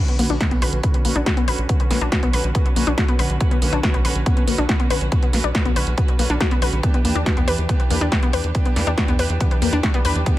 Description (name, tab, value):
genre	uplifting trance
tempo	140 BPM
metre	4/4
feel	straight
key	B harmonic minor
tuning	A4 = 440 Hz
part	warm studio string section	sustained chords	0.0-10.4 s	D3 to B4	-26 LUFS	right 2 dB	sidechain pumping, low-pass filter
part	analog pluck	arpeggios	0.0-10.3 s	A#3 to B4	-24 LUFS	left 4 dB	chorus, sidechain pumping, dub echo
part	punchy analog drum machine	drums	0.1-10.3 s	hi-hat, snare drum	-25 LUFS	right 1 dB	sidechain pumping on hats, sidechain pumping on cymbals
part	tight sequencer bass	bass	0.2-10.2 s	B1 to E2	-22 LUFS	equal	sidechain pumping
part	electronic kick drum	drums	0.4-10.3 s	none	-19 LUFS	equal	none
room	little or no reverb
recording	none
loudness	-17 LUFS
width	side -15 dB against mid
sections	0.0-10.4 A section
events	filter sweep on string section 0.0-10.4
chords	0.0 Bmadd9; 6.8 Em7